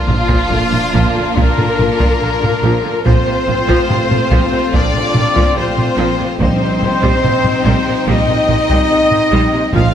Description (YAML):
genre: cinematic, epic orchestral film score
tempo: 72 BPM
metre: 4/4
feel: straight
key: unclear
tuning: A4 = 440 Hz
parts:
  - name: rich studio violin section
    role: melody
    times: 0.0-9.9 s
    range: F4 to F5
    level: -21 LUFS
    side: left 4 dB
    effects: none
  - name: rich chamber violin section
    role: second line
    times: 0.0-9.9 s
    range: C4 to F4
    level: -24 LUFS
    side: left 4 dB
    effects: none
  - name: rich symphonic viola section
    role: accompaniment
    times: 0.0-9.9 s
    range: C3 to Bb3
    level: -21 LUFS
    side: right 1 dB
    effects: none
  - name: mellow French horn section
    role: sustained chords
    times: 0.0-9.9 s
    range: F3 to F4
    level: -22 LUFS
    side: left 5 dB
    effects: none
  - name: warm symphonic string section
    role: sustained chords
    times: 0.0-9.9 s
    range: C4 to G5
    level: -25 LUFS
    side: left 2 dB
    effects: none
  - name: mellow trumpet section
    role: stabs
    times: 0.0-9.9 s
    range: F4 to F5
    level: -19 LUFS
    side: right 2 dB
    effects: none
  - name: sub drop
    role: sound effects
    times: 0.0-3.1 s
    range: none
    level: -25 LUFS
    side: equal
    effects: none
  - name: rich symphonic cello section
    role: bass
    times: 0.1-9.8 s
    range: Bb2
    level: -22 LUFS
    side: right 3 dB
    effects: none
  - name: rich symphonic double bass section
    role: bass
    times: 0.1-9.8 s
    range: Bb1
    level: -20 LUFS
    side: right 3 dB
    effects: none
  - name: taiko ensemble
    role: drums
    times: 0.1-9.9 s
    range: none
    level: -18 LUFS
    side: equal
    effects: none
  - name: timpani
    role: percussion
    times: 6.4-9.9 s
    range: Bb2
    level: -23 LUFS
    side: left 2 dB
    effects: none
room: moderate concert hall reverb, RT60 1.8 s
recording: none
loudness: -11 LUFS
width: side -9 dB against mid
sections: 0.0-9.9 A section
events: impact 0.0-3.1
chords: 0.0 Bb; 3.1 F/Bb; 6.4 Cm/Bb